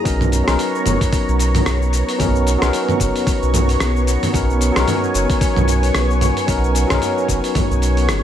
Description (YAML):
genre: sunset chillout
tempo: 112 BPM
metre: 4/4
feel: swing 57% on 16ths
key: B major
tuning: A4 = 440 Hz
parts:
  - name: barky tine electric piano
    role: accompaniment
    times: 0.0-8.2 s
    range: F#3 to A#4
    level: -21 LUFS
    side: left 1 dB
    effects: overdrive, auto-pan, digital delay
  - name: lush unison pad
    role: sustained chords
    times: 0.0-8.2 s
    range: B3 to C#6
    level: -23 LUFS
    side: equal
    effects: chorus, phaser
  - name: warm sub bass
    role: bass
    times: 0.1-8.2 s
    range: F#1 to B1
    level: -18 LUFS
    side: equal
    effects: none
  - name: dusty soul sampler-style drum kit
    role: drums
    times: 0.1-8.2 s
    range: hi-hat, rim click, shaker, toms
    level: -22 LUFS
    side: equal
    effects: overdrive
  - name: electronic kick drum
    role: drums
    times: 0.1-7.7 s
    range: none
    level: -21 LUFS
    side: equal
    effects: overdrive
room: light reverb, digital ambience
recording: none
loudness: -15 LUFS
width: side -10 dB against mid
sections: 0.0-8.2 A section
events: none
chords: 0.1 Bmaj9